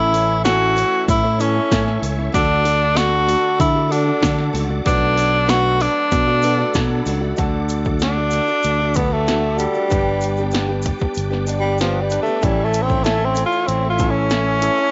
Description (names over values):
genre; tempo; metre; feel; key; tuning
folk rock and heartland rock; 95 BPM; 4/4; straight; D major; A4 = 441 Hz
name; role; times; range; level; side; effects
breathy tenor saxophone; melody; 0.0-14.9 s; F3 to F#4; -21 LUFS; equal; none
picked acoustic archtop guitar; accompaniment; 0.0-14.9 s; G2 to G4; -29 LUFS; equal; none
warm concert grand piano; accompaniment; 0.0-14.9 s; C#4 to D5; -30 LUFS; equal; none
bright tonewheel organ; sustained chords; 0.0-14.9 s; A4 to D6; -34 LUFS; equal; slow rotary speaker, overdrive, chorus vibrato
fingered electric bass; bass; 0.0-14.7 s; G1 to D3; -24 LUFS; equal; none
punchy analog drum machine; drums; 0.1-14.8 s; hi-hat, kick drum, snare drum; -25 LUFS; equal; none
tube shaker; percussion; 0.1-14.9 s; none; -41 LUFS; equal; none
room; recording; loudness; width
light reverb, studio ambience; nothing above 7.8 kHz; -18 LUFS; mono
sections
0.0-7.4 A section; 7.4-14.9 B section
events
tenor saxophone solo 7.4-14.9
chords
0.0 A; 2.3 D; 4.9 Bm7; 7.4 D; 9.9 G; 12.4 A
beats
0.45 1.08 1.71 | 2.34 2.97 3.60 4.23 | 4.87 5.50 6.13 6.76 | 7.39 8.02 8.65 9.28 | 9.91 10.54 11.17 11.80 | 12.43 13.06 13.68 14.31